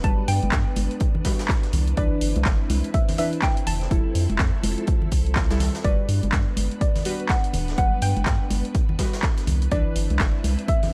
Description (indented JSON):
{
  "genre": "deep house",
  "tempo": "124 BPM",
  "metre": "4/4",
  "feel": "swing 60% on 16ths",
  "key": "G major",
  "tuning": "A4 = 441 Hz",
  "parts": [
    { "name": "mallet-like synth pluck", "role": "melody", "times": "0.0-10.9 s", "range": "D5 to A5", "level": "-32 LUFS", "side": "equal", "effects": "chorus, phaser, cassette tape, tape echo" },
    { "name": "soft string machine", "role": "sustained chords", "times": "0.0-10.9 s", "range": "F3 to B4", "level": "-37 LUFS", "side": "equal", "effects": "ensemble chorus, sidechain pumping" },
    { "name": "deep mellow chord stab", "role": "stabs", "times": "0.0-10.9 s", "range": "E3 to B4", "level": "-34 LUFS", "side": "equal", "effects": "chorus, cassette tape, sidechain pumping" },
    { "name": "round analog bass", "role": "bass", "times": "0.0-10.6 s", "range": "D1 to G2", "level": "-26 LUFS", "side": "equal", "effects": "sidechain pumping" },
    { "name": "electronic kick drum", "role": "drums", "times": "0.0-10.8 s", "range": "none", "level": "-25 LUFS", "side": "equal", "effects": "none" },
    { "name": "punchy analog drum machine", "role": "drums", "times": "0.0-10.9 s", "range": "handclaps, hi-hat", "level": "-33 LUFS", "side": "equal", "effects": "none" },
    { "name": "swinging big-band drum kit", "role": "drums", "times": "0.0-10.9 s", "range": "hi-hat, snare drum", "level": "-41 LUFS", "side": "equal", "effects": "sidechain pumping on hats, high-pass filter on hats, high-pass filter on snare, high-pass filter on room" },
    { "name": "congas", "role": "percussion", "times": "0.4-10.9 s", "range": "none", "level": "-34 LUFS", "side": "equal", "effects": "none" }
  ],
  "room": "little or no reverb",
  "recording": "cassette tape",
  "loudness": "-23 LUFS",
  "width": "mono",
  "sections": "0.0-10.9 A section",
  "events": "none",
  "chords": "0.0 Gmaj7; 1.7 Cmaj9; 3.7 Fmaj9; 5.8 Gmaj7; 9.5 Cmaj9",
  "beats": "| 0.04 0.52 1.01 1.49 | 1.97 2.46 2.94 3.42 | 3.91 4.39 4.88 5.36 | 5.84 6.33 6.81 7.30 | 7.78 8.26 8.75 9.23 | 9.72 10.20 10.68"
}